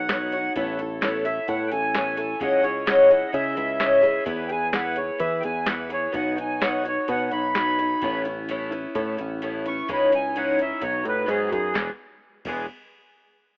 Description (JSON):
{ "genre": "folk rock and heartland rock", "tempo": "129 BPM", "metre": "4/4", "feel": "straight", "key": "E major", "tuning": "A4 = 439 Hz", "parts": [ { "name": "accordion", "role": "melody", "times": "0.0-11.7 s", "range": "G4 to C#6", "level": "-26 LUFS", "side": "right 1 dB", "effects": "none" }, { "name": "picked twelve-string acoustic guitar", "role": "accompaniment", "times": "0.0-12.7 s", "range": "E2 to D#5", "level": "-23 LUFS", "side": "left 1 dB", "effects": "none" }, { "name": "picked electric bass", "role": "bass", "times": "0.0-12.7 s", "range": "E1 to E3", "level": "-30 LUFS", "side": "equal", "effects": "none" }, { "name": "soft vintage rhythm box", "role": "drums", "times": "0.1-12.6 s", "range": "crash cymbal, hi-hat, kick drum, snare drum", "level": "-28 LUFS", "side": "equal", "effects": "none" } ], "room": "light reverb", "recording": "rough home demo mix, telephone sound", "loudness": "-21 LUFS", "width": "side -24 dB against mid", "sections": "0.0-11.8 A section; 11.8-13.6 B section", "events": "accordion solo 0.0-11.8", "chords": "0.0 Badd9; 0.6 Aadd9; 2.4 C#madd9; 4.3 E; 6.1 Badd9; 8.0 Aadd9; 9.9 C#madd9; 10.8 B; 11.8 E", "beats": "0.10 | 0.56 1.02 1.49 1.95 | 2.41 2.88 3.34 3.81 | 4.28 4.74 5.21 5.67 | 6.14 6.61 7.08 7.54 | 8.01 8.48 8.95 9.42 | 9.88 10.35 10.82 11.29 | 11.75 12.22" }